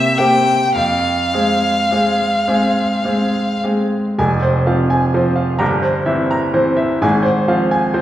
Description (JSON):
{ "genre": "classical, romantic duo for violin and grand piano", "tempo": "34-44 BPM (dotted quarters)", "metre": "6/8", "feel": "rubato", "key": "F minor", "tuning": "A4 = 440 Hz", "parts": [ { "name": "rich violin", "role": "melody", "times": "0.0-3.6 s", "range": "E5 to G5", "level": "-16 LUFS", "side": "left 1 dB", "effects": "none" }, { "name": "bright concert grand piano", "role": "accompaniment", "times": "0.0-8.0 s", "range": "F1 to Bb5", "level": "-15 LUFS", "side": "equal", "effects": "none" } ], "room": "wet recital hall reverb, RT60 1.7 s", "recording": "heard from further back in the room", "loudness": "-14 LUFS", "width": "side -12 dB against mid", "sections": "0.0-4.2 A section; 4.2-8.0 B section", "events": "none", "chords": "0.0 C7; 0.7 Fm; 5.6 C7/G; 7.0 Fm/Ab" }